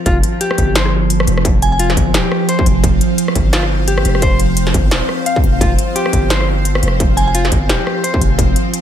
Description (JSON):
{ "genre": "half-time drum and bass", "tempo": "173 BPM", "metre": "4/4", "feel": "swing 57% on 16ths, half-time", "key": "unclear", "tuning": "A4 = 440 Hz", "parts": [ { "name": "bowed-like drone", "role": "sustained chords", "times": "0.0-8.8 s", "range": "F3 to F5", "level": "-19 LUFS", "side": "right 1 dB", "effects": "built-in reverb, phaser, sidechain pumping" }, { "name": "clean electric guitar", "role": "arpeggios", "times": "0.1-8.2 s", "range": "F4 to F5", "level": "-21 LUFS", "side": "left 2 dB", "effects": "vintage 12-bit sampler grit, tape echo" }, { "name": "long sustained 808-style bass", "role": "bass", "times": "0.1-8.5 s", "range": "Eb1 to G1", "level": "-16 LUFS", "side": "equal", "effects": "none" }, { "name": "electronic kick drum", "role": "drums", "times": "0.1-8.5 s", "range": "none", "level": "-16 LUFS", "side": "equal", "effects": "distortion" }, { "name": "industrial drum kit", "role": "drums", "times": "0.1-8.8 s", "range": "hi-hat, rim click, snare drum", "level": "-19 LUFS", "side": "equal", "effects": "none" }, { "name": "glassy synth bell", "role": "melody", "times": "1.6-1.8, 7.2-7.3 s", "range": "Ab5", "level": "-23 LUFS", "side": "right 2 dB", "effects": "chorus, vintage 12-bit sampler grit, tape echo" } ], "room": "little or no reverb", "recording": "none", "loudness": "-12 LUFS", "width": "side -10 dB against mid", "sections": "0.1-8.8 A section", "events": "drop 0.1-8.8", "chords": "0.1 F5", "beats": "| 0.06 0.41 0.76 1.10 | 1.45 1.80 2.14 2.49 | 2.84 3.18 3.53 3.88 | 4.22 4.57 4.92 5.26 | 5.61 5.96 6.30 6.65 | 7.00 7.35 7.69 8.04 | 8.39 8.73" }